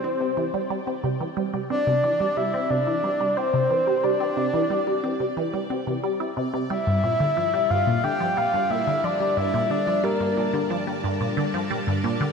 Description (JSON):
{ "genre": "ambient", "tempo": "90 BPM", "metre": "4/4", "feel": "straight", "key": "unclear", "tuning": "A4 = 439 Hz", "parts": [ { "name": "breathy flute-like synth lead", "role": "melody", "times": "0.0-10.7 s", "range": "Bb4 to G5", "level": "-24 LUFS", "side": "left 1 dB", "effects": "chorus, tape echo" }, { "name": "string machine, full ensemble", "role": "sustained chords", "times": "0.0-12.3 s", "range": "G3 to A5", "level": "-33 LUFS", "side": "equal", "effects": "phaser, ensemble chorus" }, { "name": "resonant blip pluck", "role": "riff", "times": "0.0-12.3 s", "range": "G2 to E4", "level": "-25 LUFS", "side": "right 1 dB", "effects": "phaser, tape echo" }, { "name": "bubbling stepped-filter texture", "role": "texture", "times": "0.0-12.3 s", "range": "D5", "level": "-42 LUFS", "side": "right 1 dB", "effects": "chorus, built-in reverb" } ], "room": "wet lush hall reverb, RT60 2.5 s", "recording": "dreamy mix soaked in reverb", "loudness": "-21 LUFS", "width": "side -5 dB against mid", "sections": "0.0-12.3 A section", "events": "fade-in on string machine 0.0-12.3; fade-in on synth texture 0.0-12.3", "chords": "0.0 Cadd9; 6.7 Gm" }